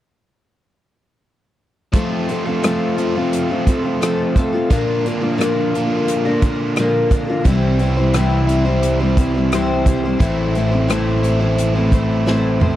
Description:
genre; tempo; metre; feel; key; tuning
folk rock and heartland rock; 87 BPM; 4/4; straight; unclear; A4 = 439 Hz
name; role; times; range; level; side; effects
picked twelve-string acoustic guitar; accompaniment; 1.9-12.8 s; A2 to C5; -19 LUFS; left 3 dB; none
biting overdriven guitar; riff; 1.9-12.8 s; A2 to F4; -21 LUFS; right 3 dB; none
natural country drum kit; drums; 1.9-12.8 s; hi-hat, kick drum, rim click, snare drum, toms; -17 LUFS; equal; none
fingered electric bass; bass; 7.5-12.8 s; A1 to C2; -19 LUFS; equal; none
room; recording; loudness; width
small room ambience; dry, close 1970s-style studio recording; -15 LUFS; side -13 dB against mid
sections
1.9-12.8 A section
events
drum fill 12.3-12.8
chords
1.9 F; 4.7 Bb; 7.5 C; 10.2 Am

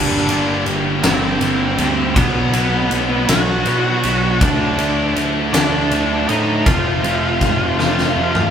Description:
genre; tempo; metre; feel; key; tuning
quiet-loud alternative rock; 53 BPM (dotted quarters); 6/8; straight; unclear; A4 = 436 Hz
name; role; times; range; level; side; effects
octave-fuzz lead guitar; melody; 0.0-8.5 s; B3 to F#5; -20 LUFS; equal; distortion
rich symphonic string section; sustained chords; 0.0-8.5 s; A4 to D6; -34 LUFS; left 4 dB; none
distorted electric guitar; riff; 0.0-8.5 s; F2 to D4; -24 LUFS; equal; overdrive
scooped high-gain guitar; riff; 0.0-8.5 s; F2 to D4; -24 LUFS; left 8 dB; distortion
thick fuzz guitar; riff; 0.0-8.5 s; F2 to D4; -23 LUFS; right 6 dB; distortion
fuzz picked electric bass; bass; 0.0-8.5 s; F1 to B2; -22 LUFS; equal; overdrive
huge arena drum kit; drums; 0.3-8.5 s; kick drum, ride cymbal, snare drum, toms; -20 LUFS; equal; none
room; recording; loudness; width
moderate large studio reverb, RT60 1.1 s; band playing live in one room; -14 LUFS; side -8 dB against mid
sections
0.0-8.5 A section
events
drum fill 7.8-8.5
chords
0.0 Gm; 2.2 Bm; 4.4 D; 6.7 F

